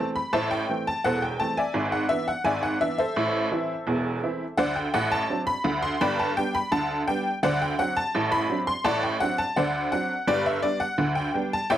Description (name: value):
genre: ragtime piano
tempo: 84 BPM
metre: 2/4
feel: straight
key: G major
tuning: A4 = 439 Hz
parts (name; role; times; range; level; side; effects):
- honky-tonk upright piano; solo; 0.0-11.8 s; E1 to C6; -23 LUFS; equal; none
room: moderate booth ambience, RT60 0.2 s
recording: faint mains hum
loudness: -23 LUFS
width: side -11 dB against mid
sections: 0.0-11.8 A section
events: none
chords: 0.0 Am; 1.7 E7/G#; 3.2 Am; 4.6 D7; 6.0 G; 7.4 D7/A; 10.3 G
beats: | 0.33 1.04 | 1.75 2.46 | 3.17 3.88 | 4.58 5.29 | 6.01 6.72 | 7.43 8.14 | 8.85 9.56 | 10.27 10.98 | 11.70